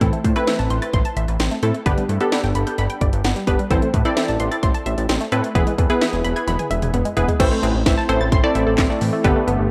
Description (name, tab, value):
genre	synth-pop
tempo	130 BPM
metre	4/4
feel	straight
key	A minor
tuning	A4 = 441 Hz
part	funky polysynth comp	accompaniment	0.0-9.6 s	A3 to D5	-24 LUFS	equal	chorus, analog delay
part	unison pluck	arpeggios	0.0-9.6 s	D3 to A6	-27 LUFS	equal	analog delay
part	fat analog bass	bass	0.0-9.7 s	E1 to A2	-24 LUFS	equal	none
part	house drum kit	drums	0.0-9.6 s	crash cymbal, handclaps, hi-hat, kick drum, snare drum, toms	-24 LUFS	equal	analog delay
part	warm analog pad	sustained chords	7.4-9.7 s	A3 to G4	-29 LUFS	equal	none
room	light reverb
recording	echo-heavy mix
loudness	-19 LUFS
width	mono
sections	0.0-7.4 A section; 7.4-9.7 B section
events	drum fill 6.5-7.4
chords	0.0 Am; 1.9 G; 3.7 Am; 5.6 E; 7.4 Am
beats	| 0.01 0.47 0.94 1.40 | 1.86 2.32 2.78 3.24 | 3.71 4.17 4.63 5.09 | 5.55 6.01 6.47 6.94 | 7.40 7.86 8.32 8.78 | 9.24 9.71